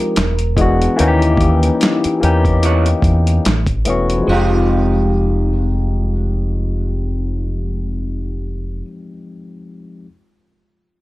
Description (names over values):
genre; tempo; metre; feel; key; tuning
R&B, neo-soul; 73 BPM; 4/4; swing 55% on 16ths; unclear; A4 = 439 Hz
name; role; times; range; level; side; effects
sitar; melody; 0.0-8.8 s; F4 to Bb4; -26 LUFS; right 2 dB; plate reverb, tape echo
barky tine electric piano; accompaniment; 0.0-10.1 s; E3 to G4; -19 LUFS; left 3 dB; phaser, plate reverb
deep dub fingered electric bass; bass; 0.2-8.8 s; E1 to Fb2; -17 LUFS; equal; none
dusty soul sampler-style drum kit; drums; 0.2-4.3 s; handclaps, hi-hat, kick drum, snare drum; -18 LUFS; equal; overdrive
electric guitar through a small old amp; second line; 2.6-8.9 s; Ab3 to Db5; -24 LUFS; right 4 dB; plate reverb
room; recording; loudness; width
light reverb; dark, warm production; -14 LUFS; side -18 dB against mid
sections
0.0-4.3 A section; 4.3-7.6 B section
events
none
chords
0.2 E9; 1.0 Eb7b9; 3.4 A69; 4.3 Fm9